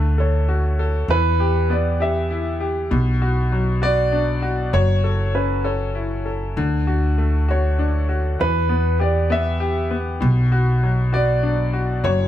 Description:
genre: six-eight pop ballad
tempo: 66 BPM (dotted quarters)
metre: 6/8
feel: straight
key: unclear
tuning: A4 = 442 Hz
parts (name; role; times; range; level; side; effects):
- bright upright piano; accompaniment; 0.0-12.3 s; B2 to A4; -24 LUFS; left 3 dB; none
- upright bass; bass; 0.0-12.3 s; F#1 to E2; -20 LUFS; equal; none
- dark baby grand piano; melody; 0.2-12.3 s; B4 to E5; -23 LUFS; right 1 dB; none
room: light reverb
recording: band playing live in one room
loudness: -17 LUFS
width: side -12 dB against mid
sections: 0.0-12.3 A section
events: none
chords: 0.0 D; 1.1 Em; 2.9 Bm; 4.7 F#m7; 6.6 D; 8.4 Em; 10.2 Bm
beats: 0.18 | 1.09 2.01 | 2.92 3.83 | 4.74 5.65 | 6.57 7.49 | 8.40 9.31 | 10.22 11.13 | 12.04

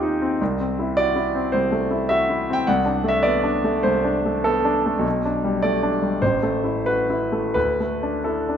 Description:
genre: classical, romantic character piece for solo piano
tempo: 84-108 BPM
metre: 4/4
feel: rubato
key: unclear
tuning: A4 = 440 Hz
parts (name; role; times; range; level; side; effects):
- clear concert grand piano; solo; 0.0-8.6 s; A1 to G5; -19 LUFS; equal; none
room: moderate recital hall reverb, RT60 1.4 s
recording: none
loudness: -19 LUFS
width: side -8 dB against mid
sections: 0.0-8.6 A section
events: none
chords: 0.4 Am/C; 2.7 D5/C; 5.0 G/B; 6.2 Am; 7.6 D5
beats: | 0.40 0.96 1.52 2.10 | 2.68 3.24 3.84 4.45 | 5.05 5.62 6.22 6.86 | 7.56 8.26

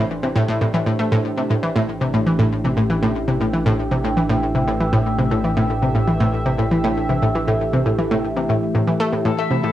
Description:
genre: ambient, sequencer-driven space music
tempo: 118 BPM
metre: 4/4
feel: straight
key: A minor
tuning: A4 = 440 Hz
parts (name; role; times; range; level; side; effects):
- sweeping resonant pad; sustained chords; 0.1-9.7 s; E3 to E5; -24 LUFS; right 1 dB; chorus, phaser, cassette tape
- analog drone; bass; 0.1-9.7 s; A1; -28 LUFS; equal; chorus, tube saturation
- analog pluck; riff; 0.2-9.7 s; A2 to A3; -18 LUFS; equal; chorus, cassette tape, ping-pong delay
- Celtic harp; arpeggios; 9.3-9.7 s; E4 to E5; -23 LUFS; left 5 dB; auto-pan, cassette tape, ping-pong delay
room: wet studio reverb, RT60 0.6 s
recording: home recording on cassette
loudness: -17 LUFS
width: side -13 dB against mid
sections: 0.0-9.7 A section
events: fade-in on analog synth pad 0.0-9.7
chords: 0.0 Am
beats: 0.10 0.61 | 1.12 1.63 2.14 2.65 | 3.15 3.66 4.17 4.68 | 5.19 5.70 6.21 6.71 | 7.22 7.73 8.24 8.75 | 9.26

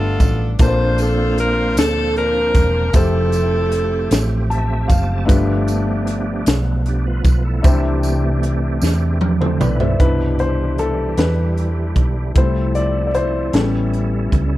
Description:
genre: slow gospel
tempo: 51 BPM (dotted quarters)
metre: 6/8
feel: straight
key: C major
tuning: A4 = 440 Hz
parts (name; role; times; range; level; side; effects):
- warm saxophone section; melody; 0.0-4.5 s; B3 to C5; -19 LUFS; equal; slapback echo
- warm grand piano; accompaniment; 0.0-14.6 s; G2 to A5; -22 LUFS; left 3 dB; none
- hollow-body short-scale fingered electric bass; bass; 0.0-14.6 s; E1 to E2; -19 LUFS; equal; none
- crisp fusion drum kit; drums; 0.2-14.5 s; hi-hat, kick drum, snare drum, toms; -16 LUFS; equal; none
- tambourine; percussion; 0.2-10.0 s; none; -34 LUFS; right 7 dB; none
- bright tonewheel organ; sustained chords; 0.6-14.6 s; E3 to A5; -26 LUFS; right 3 dB; fast rotary speaker, chorus vibrato
- mellow French horn section; sustained chords; 10.0-14.6 s; E3 to E4; -32 LUFS; right 2 dB; none
room: small room ambience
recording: none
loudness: -15 LUFS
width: side -16 dB against mid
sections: 0.0-10.0 A section; 10.0-14.6 B section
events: grand piano fill 4.1-5.3; tonewheel organ fill 4.1-5.3; drum fill 8.8-10.0; grand piano solo 10.0-14.6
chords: 0.0 G13; 0.6 Bbmaj9; 2.9 Fmaj9; 5.3 G9; 7.6 C69; 12.4 Fmaj7/C; 13.5 A7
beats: | 0.59 1.76 | 2.94 4.12 | 5.29 6.47 | 7.64 8.82 | 10.00 11.18 | 12.36 13.54

